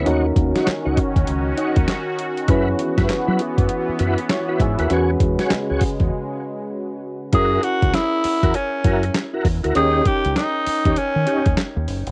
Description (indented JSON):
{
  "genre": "R&B, new jack swing",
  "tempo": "99 BPM",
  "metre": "4/4",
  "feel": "swing 62% on 16ths",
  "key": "unclear",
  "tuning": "A4 = 440 Hz",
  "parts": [
    { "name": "soft electric-piano-like synth keys", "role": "accompaniment", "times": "0.0-12.1 s", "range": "C#4 to G5", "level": "-28 LUFS", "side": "equal", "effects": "chorus, cassette tape" },
    { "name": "sweeping resonant pad", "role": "sustained chords", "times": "0.0-7.3 s", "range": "C#3 to F#4", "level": "-28 LUFS", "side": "equal", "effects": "chorus, cassette tape" },
    { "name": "tonewheel organ", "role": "stabs", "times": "0.0-11.5 s", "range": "C#4 to C#5", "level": "-26 LUFS", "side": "equal", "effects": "chorus vibrato, fast rotary speaker, cassette tape" },
    { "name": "deep dub fingered electric bass", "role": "bass", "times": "0.0-12.1 s", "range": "F#1 to F#3", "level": "-25 LUFS", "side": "equal", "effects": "none" },
    { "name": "dusty soul sampler-style drum kit", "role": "drums", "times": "0.1-12.1 s", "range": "handclaps, hi-hat, kick drum, snare drum", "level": "-23 LUFS", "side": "equal", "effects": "none" },
    { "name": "raspy tenor saxophone", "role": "melody", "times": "7.3-11.6 s", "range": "C#4 to G#4", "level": "-23 LUFS", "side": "equal", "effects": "cassette tape" }
  ],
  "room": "light reverb",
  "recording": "home recording on cassette",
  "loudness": "-20 LUFS",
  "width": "mono",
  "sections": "0.0-7.3 A section; 7.3-12.1 B section",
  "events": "break 6.1-7.3",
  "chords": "0.1 D#m7; 2.5 F#7sus4; 4.9 E69; 7.3 F#7; 9.8 D#7"
}